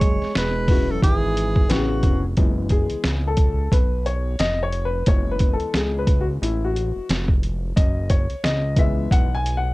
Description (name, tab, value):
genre	hip hop, jazz-hop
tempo	89 BPM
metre	4/4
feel	swing 58% on 16ths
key	F# dorian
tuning	A4 = 441 Hz
part	breathy alto saxophone	melody	0.0-2.2 s	F#4 to C#5	-26 LUFS	equal	plate reverb
part	mellow trombone	second line	0.0-2.2 s	C#3 to G#3	-28 LUFS	right 4 dB	plate reverb
part	fat analog bass	bass	0.0-9.7 s	E1 to C#2	-24 LUFS	equal	none
part	trip hop sampler-style drum kit	drums	0.0-9.6 s	hi-hat, kick drum, snare drum	-19 LUFS	equal	none
part	dark upright piano	accompaniment	0.7-9.7 s	E3 to G#5	-26 LUFS	left 3 dB	plate reverb
room	light reverb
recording	dark, warm production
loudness	-18 LUFS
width	side -20 dB against mid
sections	0.0-2.4 A section; 2.4-9.7 B section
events	upright piano solo 2.4-9.7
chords	0.0 F#9sus4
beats	0.35 1.03 1.70 | 2.37 3.05 3.72 4.40 | 5.07 5.75 6.42 7.09 | 7.77 8.44 9.12